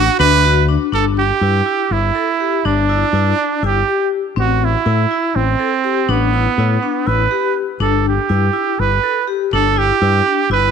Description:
progressive instrumental, band music in an uneven meter; 245 BPM (eighths); 7/8; straight; G major; A4 = 440 Hz
bright trumpet; melody; 0.0-10.7 s; B3 to B4; -16 LUFS; right 9 dB
fingered electric bass with an envelope filter; bass; 0.0-10.7 s; G1 to A2; -17 LUFS; left 2 dB
vibraphone with hard mallets; arpeggios; 0.2-10.6 s; C4 to A4; -21 LUFS; left 14 dB
light reverb, studio reverb; 1960s-style stereo with parts hard left and right; -13 LUFS; side -7 dB against mid
0.9-10.7 A section
0.0 D; 0.9 G5; 4.4 Amadd9; 7.8 G6

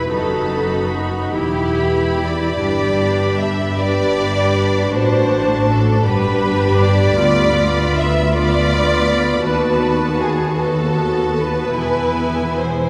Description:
classical, slow romantic movement for symphony orchestra; 45-55 BPM (dotted quarters); 6/8; rubato; A4 = 439 Hz
rich symphonic violin section; melody; 0.0-12.9 s; G#5 to B5; -29 LUFS; equal
warm symphonic violin section; second line; 0.0-12.9 s; F#4 to E5; -22 LUFS; equal
rich studio viola section; accompaniment; 0.0-12.9 s; B3 to G4; -23 LUFS; equal
concert harp; arpeggios; 0.0-12.9 s; E2 to B4; -26 LUFS; equal
warm symphonic cello section; bass; 0.0-12.9 s; D2 to A2; -25 LUFS; equal
warm symphonic double bass section; bass; 0.0-12.9 s; E1 to D#2; -26 LUFS; equal
wet church reverb, RT60 3.6 s; recorded in a church or concert hall; -17 LUFS; mono
0.0-12.9 A section
0.1 B7/F#; 1.3 Em; 2.6 G; 4.9 D7/A; 6.1 G; 7.2 Bdim/D; 9.5 B7/D#; 11.8 E

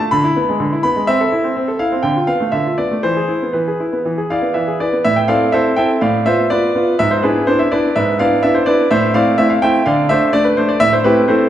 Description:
classical-period piano sonatina; 125 BPM; 4/4; rubato; A minor; A4 = 440 Hz
clear concert grand piano; solo; 0.0-11.5 s; G#2 to B5; -13 LUFS; equal
wet recital hall reverb, RT60 1.8 s; recorded in a church or concert hall; -13 LUFS; side -11 dB against mid
0.0-5.1 A section; 5.1-11.5 B section
0.1 E7/D; 1.1 Am/C; 2.0 Bm7b5/D; 3.0 E; 5.1 Am; 6.0 Bm7b5/A; 7.0 E7/G#; 8.9 Am; 9.9 D5; 10.8 Am

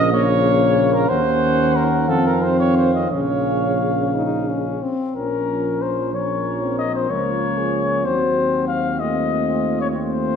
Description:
classical, brass quintet; 58-63 BPM (dotted quarters); 6/8; rubato; Bb minor; A4 = 442 Hz
dark trumpet; melody; 0.0-10.4 s; Bb4 to Gb5; -23 LUFS; left 6 dB
warm flugelhorn; second line; 0.0-10.4 s; F4 to Eb5; -23 LUFS; right 1 dB
clear French horn; accompaniment; 0.0-10.4 s; Bb3 to Eb4; -25 LUFS; left 3 dB
mellow euphonium; accompaniment; 0.0-10.4 s; Db3 to A3; -27 LUFS; right 3 dB
mellow tuba; bass; 0.0-10.4 s; Bb1 to F2; -23 LUFS; right 3 dB
wet recital hall reverb, RT60 1.2 s; -17 LUFS; side -7 dB against mid
0.0-5.2 A section; 5.2-10.4 A section
0.0 Bbm; 1.1 Ebm7; 2.1 F5; 3.1 Bbm; 7.1 Bbm/Db; 8.1 Cdim/Eb; 9.0 F7/Eb

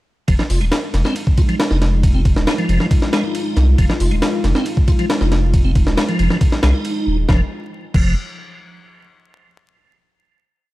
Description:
breakbeat, breaks; 137 BPM; 4/4; straight; F minor; A4 = 438 Hz
dark analog pad; sustained chords; 0.6-7.5 s; Ab3 to F4; -25 LUFS; equal; chorus, vintage 12-bit sampler grit, sidechain pumping
tonewheel organ; riff; 0.3-8.1 s; F3 to F4; -24 LUFS; equal; overdrive, chorus vibrato, slow rotary speaker, tube saturation
saturated sub bass; bass; 0.3-8.1 s; Eb1 to C2; -16 LUFS; equal
breakbeat sampler-style drum kit; drums; 0.3-8.0 s; crash cymbal, hi-hat, kick drum, ride cymbal, snare drum; -17 LUFS; equal
little or no reverb; dark, warm production, vinyl crackle; -14 LUFS; side -17 dB against mid
0.3-7.3 drop; 7.3-9.0 final chord
drop 0.3-7.3
0.3 Fm7; 7.3 Fm9

